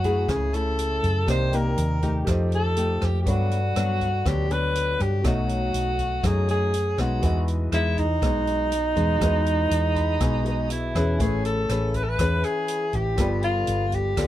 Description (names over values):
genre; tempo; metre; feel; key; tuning
bossa nova; 121 BPM; 4/4; straight; E major, A major from 11.2 s; A4 = 440 Hz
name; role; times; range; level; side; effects
breathy alto saxophone; melody; 0.0-14.3 s; D#4 to C5; -26 LUFS; equal; none
nylon-string guitar; accompaniment; 0.0-14.3 s; F#2 to B4; -28 LUFS; left 2 dB; none
warm grand piano; accompaniment; 0.0-14.3 s; A3 to B5; -36 LUFS; right 2 dB; none
hollow-body short-scale fingered electric bass; bass; 0.0-14.3 s; G1 to G2; -25 LUFS; equal; none
open jazz drum kit; drums; 0.0-14.3 s; hi-hat, kick drum, rim click; -30 LUFS; equal; none
room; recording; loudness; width
little or no reverb; close, detailed microphones; -21 LUFS; side -13 dB against mid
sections
0.0-11.2 A section; 11.2-14.3 B section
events
grand piano fill 9.7-11.2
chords
0.0 F#m9; 1.3 Cm7; 2.3 F9; 3.3 Gmaj7; 5.2 B7; 7.2 Emaj7; 11.2 Amaj9; 13.2 G9